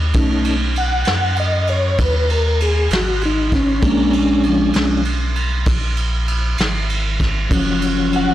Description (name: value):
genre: slow blues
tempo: 65 BPM (dotted quarters)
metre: 12/8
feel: straight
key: unclear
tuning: A4 = 438 Hz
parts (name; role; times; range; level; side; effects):
- saturated sub bass; bass; 0.0-8.3 s; Gb1 to F#2; -20 LUFS; equal; tube saturation
- vintage brush drum kit; drums; 0.1-8.3 s; kick drum, ride cymbal, snare drum; -20 LUFS; right 1 dB; none
- mellow tonewheel organ; sustained chords; 0.2-8.3 s; F3 to F#5; -18 LUFS; left 1 dB; chorus vibrato, stopped rotary speaker
room: light reverb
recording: blown-out, overdriven recording, overdrive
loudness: -15 LUFS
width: side -13 dB against mid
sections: 0.0-8.3 A section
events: tonewheel organ solo 0.0-8.3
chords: 0.2 B; 3.8 Bb7#9; 7.5 Gbmaj7(no3)